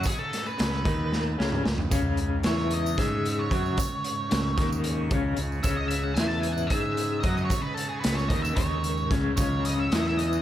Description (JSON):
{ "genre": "psychedelic rock", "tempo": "225 BPM (eighths)", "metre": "7/8", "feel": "straight", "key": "C# minor", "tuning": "A4 = 440 Hz", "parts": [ { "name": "octave-fuzz lead guitar", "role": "melody", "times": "0.0-10.4 s", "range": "G#4 to A5", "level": "-32 LUFS", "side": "right 1 dB", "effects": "distortion, diffuse ambient delay" }, { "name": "electric guitar through a small old amp", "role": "riff", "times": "0.0-10.4 s", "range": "C#3 to G#4", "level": "-31 LUFS", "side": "left 3 dB", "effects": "tremolo" }, { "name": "fuzz fingered electric bass", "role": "bass", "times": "0.0-10.4 s", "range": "C#2 to G#2", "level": "-29 LUFS", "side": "equal", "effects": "overdrive" }, { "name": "tanpura", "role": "drone", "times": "0.0-10.4 s", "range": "C#2 to C#3", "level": "-38 LUFS", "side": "right 1 dB", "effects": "stereo widening" }, { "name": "tambourine", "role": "percussion", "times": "0.0-10.4 s", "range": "none", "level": "-41 LUFS", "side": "right 9 dB", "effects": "none" }, { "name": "raw garage drum kit", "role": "drums", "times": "0.1-10.3 s", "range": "hi-hat, kick drum, snare drum, toms", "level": "-28 LUFS", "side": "equal", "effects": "none" }, { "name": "mellow tonewheel organ", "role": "sustained chords", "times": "1.9-10.4 s", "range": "C#3 to C#4", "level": "-37 LUFS", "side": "right 4 dB", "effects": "none" } ], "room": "light reverb, small room ambience", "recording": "none", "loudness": "-24 LUFS", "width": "side -12 dB against mid", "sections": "0.0-10.4 A section", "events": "lead electric guitar solo 0.0-10.4; drum fill 1.1-1.9", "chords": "0.0 C#m" }